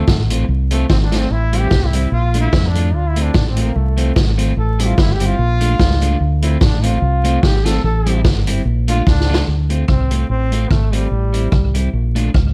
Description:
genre	ska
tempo	147 BPM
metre	4/4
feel	swing 54% on 8ths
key	D minor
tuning	A4 = 440 Hz
part	brilliant trombone	melody	0.0-9.5 s	A3 to A4	-26 LUFS	equal	slapback echo
part	electric guitar at the edge of break-up	accompaniment	0.0-12.4 s	G3 to F4	-26 LUFS	equal	none
part	fingered electric bass	bass	0.1-12.5 s	G1 to F2	-19 LUFS	equal	none
part	street-band drum kit	drums	0.1-12.4 s	hi-hat, kick drum, rim click, snare drum	-19 LUFS	equal	none
part	brilliant trombone	melody	9.9-11.7 s	G3 to C4	-27 LUFS	equal	slapback echo
room	studio ambience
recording	vinyl crackle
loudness	-16 LUFS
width	mono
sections	0.0-9.5 A section; 9.5-12.5 B section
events	trombone solo 0.0-9.5; drum fill 9.1-9.5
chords	0.0 Dm7 (rootless); 1.3 Am7; 2.1 Bbmaj7; 2.9 Dm7; 4.6 Am7; 5.4 Bbmaj7; 6.2 Dm7; 7.8 Am7; 8.7 Bbmaj7; 9.5 Dm7; 11.1 Am7; 11.9 Bbmaj7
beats	0.08 0.49 0.90 | 1.31 1.72 2.12 2.53 | 2.94 3.35 3.76 4.16 | 4.57 4.98 5.39 5.80 | 6.21 6.62 7.02 7.43 | 7.84 8.25 8.66 9.07 | 9.48 9.88 10.29 10.71 | 11.11 11.52 11.93 12.34

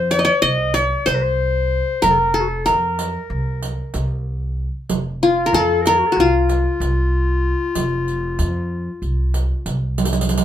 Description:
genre	Turkish makam ensemble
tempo	189 BPM (eighths)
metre	9/8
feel	straight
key	F makam hicaz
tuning	A4 = 437 Hz
part	qanun	melody	0.0-10.0 s	F4 to Eb5	-17 LUFS	left 1 dB	none
part	warm clarinet	second line	0.0-10.0 s	F4 to Eb5	-24 LUFS	left 5 dB	none
part	upright bass	bass	0.0-10.4 s	F1 to F2	-21 LUFS	equal	none
part	riq	percussion	0.1-10.4 s	none	-25 LUFS	right 5 dB	none
room	moderate small room reverb, RT60 0.5 s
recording	minimal, uncompressed stereo recording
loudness	-17 LUFS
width	side -11 dB against mid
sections	0.0-10.4 A section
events	drum fill 10.0-10.4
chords	none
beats	0.12 0.43 0.75 1.07 1.39 1.71 | 2.03 2.35 2.67 2.98 3.30 3.62 3.94 4.26 4.58 | 4.89 5.21 5.53 5.85 6.17 6.49 6.80 7.12 7.44 | 7.76 8.07 8.39 8.71 9.03 9.35 9.66 9.98 10.30

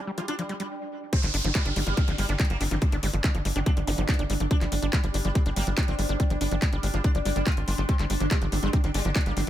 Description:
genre	psychedelic trance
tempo	142 BPM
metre	4/4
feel	straight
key	unclear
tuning	A4 = 440 Hz
part	sitar	melody	0.0-9.5 s	D3 to F4	-34 LUFS	left 1 dB	phaser, sidechain pumping, ping-pong delay
part	pulsing gated texture	sustained chords	0.0-9.5 s	D4	-36 LUFS	right 4 dB	chorus, built-in reverb, sidechain pumping
part	overdriven acid bass	riff	0.1-9.5 s	F3 to D4	-34 LUFS	equal	distortion, auto-pan, cassette tape, sidechain pumping, dub echo
part	metallic wobble bass	second line	0.2-9.5 s	C4 to F4	-44 LUFS	right 3 dB	none
part	drum and bass drum kit	drums	0.2-9.5 s	handclaps, hi-hat	-33 LUFS	left 1 dB	overdrive
part	electronic kick drum	drums	1.1-9.2 s	none	-24 LUFS	equal	overdrive
part	downlifter and zap	sound effects	1.1-4.5 s	none	-35 LUFS	right 1 dB	none
part	tight sequencer bass	bass	1.2-9.5 s	G1 to Ab1	-27 LUFS	equal	none
room	little or no reverb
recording	none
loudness	-23 LUFS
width	side -12 dB against mid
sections	0.0-1.1 A section; 1.1-9.5 B section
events	stop 0.7-1.1; drop 1.1-9.5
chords	0.0 G5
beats	0.28 0.70 | 1.13 1.55 1.97 2.40 | 2.82 3.24 3.66 4.08 | 4.51 4.93 5.35 5.78 | 6.20 6.62 7.04 7.47 | 7.89 8.31 8.73 9.16

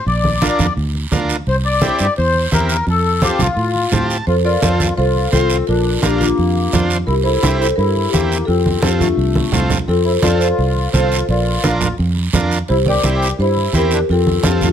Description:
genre	latin, cumbia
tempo	171 BPM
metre	4/4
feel	straight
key	F major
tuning	A4 = 441 Hz
part	accordion	second line	0.0-14.7 s	A3 to D5	-21 LUFS	left 4 dB	light tremolo tuning
part	fingered electric bass	bass	0.1-14.7 s	Bb1 to A2	-18 LUFS	right 1 dB	none
part	congas	percussion	0.1-14.7 s	none	-20 LUFS	right 2 dB	none
part	guiro	percussion	0.1-14.7 s	none	-27 LUFS	right 6 dB	none
part	overdriven combo organ	accompaniment	0.4-14.7 s	C4 to A5	-22 LUFS	right 2 dB	none
part	marimba with medium mallets	melody	4.3-14.7 s	C4 to D5	-18 LUFS	left 2 dB	none
room	light reverb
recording	close, detailed microphones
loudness	-13 LUFS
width	side -8 dB against mid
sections	0.0-4.3 A section; 4.3-14.7 B section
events	accordion solo 0.0-4.3; transistor combo organ fill 3.8-4.3; drum fill 9.4-9.9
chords	0.1 Bb; 1.5 C7; 2.9 F; 5.7 Bb; 7.1 C7; 8.5 F; 11.3 Bb; 12.7 C7; 14.1 F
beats	| 0.07 0.42 0.77 1.12 | 1.47 1.82 2.17 2.52 | 2.88 3.23 3.58 3.93 | 4.28 4.63 4.98 5.33 | 5.68 6.03 6.38 6.73 | 7.08 7.43 7.79 8.13 | 8.48 8.84 9.19 9.54 | 9.89 10.24 10.59 10.94 | 11.29 11.64 11.99 12.34 | 12.69 13.04 13.39 13.74 | 14.09 14.44

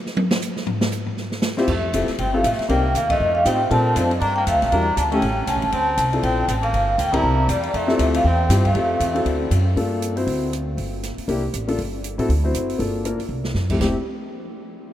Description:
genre	jazz, small-group swing and bop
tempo	238 BPM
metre	4/4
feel	swing 59% on 8ths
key	F major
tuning	A4 = 435 Hz
part	open jazz drum kit	drums	0.1-13.9 s	crash cymbal, hi-hat, kick drum, ride cymbal, rim click, snare drum, toms	-27 LUFS	equal	none
part	dark concert grand piano	accompaniment	1.6-13.9 s	F2 to C5	-24 LUFS	left 2 dB	none
part	vibraphone with medium mallets	melody	1.7-9.2 s	D5 to Bb5	-22 LUFS	equal	none
part	clear trumpet	second line	1.7-9.5 s	G3 to E4	-30 LUFS	right 3 dB	none
part	upright bass	bass	1.7-13.9 s	F1 to Bb2	-23 LUFS	equal	none
room	wet cathedral reverb, RT60 5.5 s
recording	in a vast, echoing space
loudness	-18 LUFS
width	side -12 dB against mid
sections	0.0-1.7 A section; 1.7-9.8 B section; 9.8-13.8 C section; 13.8-14.8 D section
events	drum solo 0.0-1.7; band accent 3.1, 7.1; drum fill 13.3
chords	0.0 N.C.; 1.2 C; 1.7 Fmaj7; 2.7 Cm7; 3.2 F7; 3.7 Bbmaj9; 4.7 Em7b5; 5.2 A7; 5.7 Dm7; 6.7 Gm7; 7.2 C7; 7.7 Fmaj7; 9.3 D7; 9.8 Gm7; 10.3 D7; 10.8 N.C.; 11.3 C7; 11.8 Am7/G; 12.3 D7; 12.8 Gm7; 13.3 C; 13.8 Fmaj7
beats	0.16 0.42 | 0.67 0.92 1.17 1.43 | 1.68 1.93 2.18 2.44 | 2.69 2.94 3.19 3.45 | 3.70 3.95 4.21 4.46 | 4.71 4.96 5.21 5.47 | 5.72 5.97 6.22 6.48 | 6.73 6.98 7.23 7.49 | 7.74 7.99 8.24 8.49 | 8.75 9.00 9.25 9.50 | 9.76 10.01 10.26 10.51 | 10.77 11.02 11.27 11.52 | 11.78 12.03 12.28 12.54 | 12.79 13.04 13.29 13.55 | 13.80

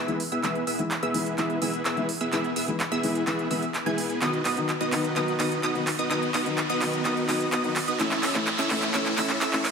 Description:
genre	EDM, festival progressive house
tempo	127 BPM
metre	4/4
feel	straight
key	E major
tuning	A4 = 437 Hz
part	wide unison pluck	arpeggios	0.0-9.6 s	D#6 to G#6	-32 LUFS	right 2 dB	phaser, ping-pong delay
part	dense compressed supersaw	riff	0.0-9.6 s	B3 to G#5	-28 LUFS	right 1 dB	low-pass filter, ping-pong delay
part	riser	sound effects	1.6-9.7 s	none	-36 LUFS	equal	none
part	felt-muted upright piano	accompaniment	0.1-9.6 s	A2 to E4	-30 LUFS	left 2 dB	ping-pong delay
part	big-room dance drum kit	drums	0.1-9.7 s	handclaps, hi-hat	-29 LUFS	right 2 dB	overdrive
room	wet lush hall reverb, RT60 2.0 s, digital ambience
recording	high-pass filter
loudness	-23 LUFS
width	side -6 dB against mid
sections	0.0-9.7 A section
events	build-up 0.0-9.7; drum fill 0.0-9.7; riser 1.6-9.7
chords	0.0 E; 4.2 B; 8.0 A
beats	| 0.44 0.91 1.38 1.85 | 2.33 2.80 3.27 3.74 | 4.22 4.69 5.16 5.63 | 6.11 6.58 7.05 7.52 | 8.00 8.47 8.94 9.41

